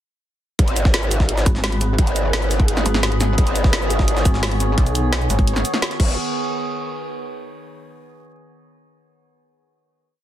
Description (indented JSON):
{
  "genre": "dark technical drum and bass",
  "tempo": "172 BPM",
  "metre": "4/4",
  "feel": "straight",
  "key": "G# minor",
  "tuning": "A4 = 440 Hz",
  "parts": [
    { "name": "metallic inharmonic drone", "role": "sustained chords", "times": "1.1-6.2 s", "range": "D#3 to C#5", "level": "-26 LUFS", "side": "equal", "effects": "chorus, built-in reverb, sidechain pumping" },
    { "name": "growl bass", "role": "bass", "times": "0.6-6.2 s", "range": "G#1", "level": "-20 LUFS", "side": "equal", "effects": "chorus, overdrive, sidechain pumping" },
    { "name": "drum and bass drum kit", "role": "drums", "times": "0.6-6.1 s", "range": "cabasa, crash cymbal, hi-hat, snare drum", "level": "-24 LUFS", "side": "equal", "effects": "none" },
    { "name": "electronic kick drum", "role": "drums", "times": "0.6-6.1 s", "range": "none", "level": "-16 LUFS", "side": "equal", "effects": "none" },
    { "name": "jungle sampler-style drum kit", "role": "drums", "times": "0.6-6.0 s", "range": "hi-hat, snare drum", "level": "-32 LUFS", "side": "equal", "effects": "none" },
    { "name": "pulsing pluck wobble bass", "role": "bass", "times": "1.5-5.6 s", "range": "G#1 to B1", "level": "-19 LUFS", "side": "equal", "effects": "chorus, tube saturation" }
  ],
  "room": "little or no reverb",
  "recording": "dense, heavily limited modern master",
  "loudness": "-16 LUFS",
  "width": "side -12 dB against mid",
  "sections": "0.6-6.2 drop; 6.2-7.6 final hit",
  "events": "drop 0.6-6.2",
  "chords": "0.6 G#m; 6.2 N.C."
}